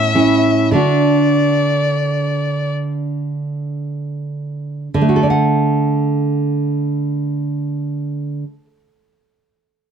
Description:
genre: romantic duo for violin and classical guitar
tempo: 26-34 BPM (dotted quarters)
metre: 6/8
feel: rubato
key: D major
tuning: A4 = 436 Hz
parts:
  - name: rich violin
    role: melody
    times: 0.0-2.7 s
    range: D5 to E5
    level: -19 LUFS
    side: left 4 dB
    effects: plate reverb
  - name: nylon-string guitar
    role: accompaniment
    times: 0.0-8.8 s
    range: A2 to F#5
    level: -16 LUFS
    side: right 2 dB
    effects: none
room: moderate studio reverb, RT60 0.6 s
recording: dark, warm production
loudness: -15 LUFS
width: side -7 dB against mid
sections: 0.0-4.9 A section; 4.9-9.3 B section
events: slowing down 0.0-4.9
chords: 0.0 A; 0.8 D

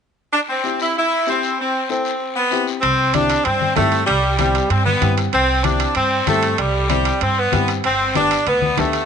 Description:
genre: latin, cumbia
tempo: 192 BPM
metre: 4/4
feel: straight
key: C major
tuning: A4 = 440 Hz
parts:
  - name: bright saxophone section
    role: melody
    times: 0.3-9.1 s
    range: G3 to E4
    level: -17 LUFS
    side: equal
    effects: none
  - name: guiro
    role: percussion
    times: 0.3-9.1 s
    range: none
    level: -30 LUFS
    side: left 13 dB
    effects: none
  - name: warm upright piano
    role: accompaniment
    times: 0.6-9.0 s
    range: B3 to A4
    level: -26 LUFS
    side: left 10 dB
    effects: none
  - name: upright bass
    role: bass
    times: 2.8-9.0 s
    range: G1 to G2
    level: -22 LUFS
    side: right 2 dB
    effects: none
  - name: timbales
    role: percussion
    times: 2.8-9.1 s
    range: none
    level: -27 LUFS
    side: right 16 dB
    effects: none
  - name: congas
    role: percussion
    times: 3.1-8.9 s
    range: none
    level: -26 LUFS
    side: left 10 dB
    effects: none
room: light reverb, studio reverb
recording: 1960s-style stereo with parts hard left and right, nothing above 10.3 kHz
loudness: -15 LUFS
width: side -7 dB against mid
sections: 0.3-2.8 A section; 2.8-9.1 B section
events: none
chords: 0.3 C; 7.8 Gadd9

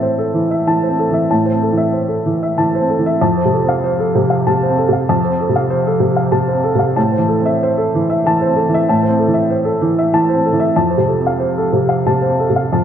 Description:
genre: neoclassical minimalist piano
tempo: 95 BPM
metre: 3/4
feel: rubato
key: unclear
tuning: A4 = 441 Hz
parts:
  - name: warm upright piano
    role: solo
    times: 0.0-12.8 s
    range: F2 to A5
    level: -13 LUFS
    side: equal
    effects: none
room: moderate concert hall reverb, RT60 2.2 s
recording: none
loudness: -13 LUFS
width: side -9 dB against mid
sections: 0.0-12.8 A section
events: none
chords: 0.0 Am; 3.2 F; 7.0 Am; 10.8 F

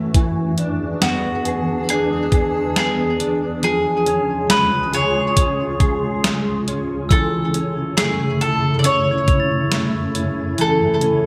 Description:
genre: dream pop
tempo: 69 BPM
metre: 4/4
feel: straight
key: F# minor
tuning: A4 = 441 Hz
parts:
  - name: granular cloud pad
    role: sustained chords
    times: 0.0-11.3 s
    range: C#2 to G#4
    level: -25 LUFS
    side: equal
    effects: built-in reverb
  - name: mellow electric guitar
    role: arpeggios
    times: 0.0-11.3 s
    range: E3 to A4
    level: -26 LUFS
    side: equal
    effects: ensemble chorus, digital delay
  - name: clean 12-bit digital drum machine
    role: drums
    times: 0.1-11.2 s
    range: hi-hat, kick drum, snare drum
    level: -21 LUFS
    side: equal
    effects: gated reverb
  - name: mandolin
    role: melody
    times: 1.0-11.3 s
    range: F#4 to D5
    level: -23 LUFS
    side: equal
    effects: digital delay
  - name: glockenspiel with soft plastic mallets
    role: texture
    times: 7.1-11.3 s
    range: E6 to A6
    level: -32 LUFS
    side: equal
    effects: digital delay
room: moderate plate reverb, RT60 2.3 s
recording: bright 1980s-style digital production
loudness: -19 LUFS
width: mono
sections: 0.0-11.3 A section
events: none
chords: 0.1 E7; 3.6 C#; 7.1 F#m7

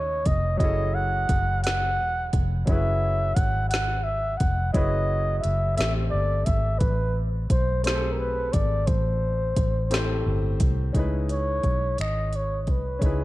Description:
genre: slow six-eight R&B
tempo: 58 BPM (dotted quarters)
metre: 6/8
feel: straight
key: C# minor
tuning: A4 = 440 Hz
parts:
  - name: breathy flugelhorn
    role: melody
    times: 0.0-13.2 s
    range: G#4 to F#5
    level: -27 LUFS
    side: equal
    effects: tape echo
  - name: warm grand piano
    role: accompaniment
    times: 0.0-13.2 s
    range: A2 to C5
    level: -33 LUFS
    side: left 2 dB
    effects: none
  - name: vintage muted fingered electric bass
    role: bass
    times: 0.0-13.2 s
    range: E1 to D#2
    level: -26 LUFS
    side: equal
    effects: none
  - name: smooth R&B drum kit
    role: drums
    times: 0.3-13.2 s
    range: finger snaps, hi-hat, kick drum, snare drum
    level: -26 LUFS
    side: equal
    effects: none
room: little or no reverb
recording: dark, warm production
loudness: -22 LUFS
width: side -17 dB against mid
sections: 0.0-10.9 A section; 10.9-13.2 B section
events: none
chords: 0.0 C#m9; 0.6 F#m9; 5.8 Am9; 10.9 C#m9

